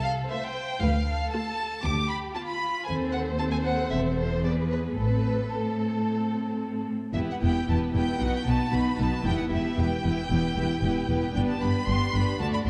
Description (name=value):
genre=quick classical-period movement for string orchestra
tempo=115 BPM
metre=4/4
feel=rubato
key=A minor, E minor from 7.2 s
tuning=A4 = 440 Hz
part: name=warm chamber violin section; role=melody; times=0.0-12.7 s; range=A4 to D6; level=-34 LUFS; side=equal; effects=none
part: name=dark symphonic violin section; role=second line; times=0.0-12.7 s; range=F4 to D5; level=-38 LUFS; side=equal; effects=none
part: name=rich symphonic cello section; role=bass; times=0.0-12.7 s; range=D2 to C3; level=-32 LUFS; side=equal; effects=none
part: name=rich symphonic double bass section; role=bass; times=0.0-12.7 s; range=E1 to D#2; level=-32 LUFS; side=equal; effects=none
part: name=rich studio viola section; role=accompaniment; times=0.3-12.7 s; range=A3 to A4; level=-32 LUFS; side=equal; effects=none
room=wet scoring stage reverb, RT60 1.9 s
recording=none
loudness=-27 LUFS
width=mono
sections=0.0-7.2 A section; 7.2-12.7 B section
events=none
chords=0.0 Am/C; 0.8 Dm; 1.8 Bdim/D; 2.9 D#dim7; 3.9 Am/E; 4.4 E; 5.0 Am; 7.2 Em; 8.2 B; 9.3 Em; 11.4 G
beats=0.30 | 0.82 1.33 1.84 2.35 | 2.87 3.39 3.92 4.44 | 4.99 5.53 6.07 6.61 | 7.16 7.69 8.22 8.74 | 9.26 9.79 10.31 10.83 | 11.35 11.87 12.39